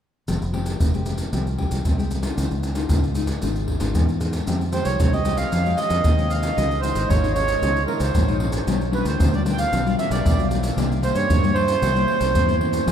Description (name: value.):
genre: samba and choro.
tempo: 114 BPM.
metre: 4/4.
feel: straight.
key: F minor.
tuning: A4 = 440 Hz.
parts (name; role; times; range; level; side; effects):
nylon-string guitar; accompaniment; 0.3-12.9 s; G2 to Ab4; -26 LUFS; left 5 dB; none.
fingered electric bass; bass; 0.3-12.9 s; F1 to G2; -24 LUFS; equal; none.
maracas, surdo and pandeiro; percussion; 0.3-12.9 s; none; -23 LUFS; equal; none.
accordion; melody; 4.7-12.6 s; Bb4 to G5; -23 LUFS; right 4 dB; slapback echo.
room: moderate cathedral reverb, RT60 7.6 s.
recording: in a vast, echoing space.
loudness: -19 LUFS.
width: side -9 dB against mid.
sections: 0.3-4.5 A section; 4.5-12.9 B section.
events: none.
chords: 0.3 Fmadd9; 2.4 Dbadd9; 4.5 Fmadd9; 6.6 Dbadd9; 8.7 G7/B; 10.8 C7.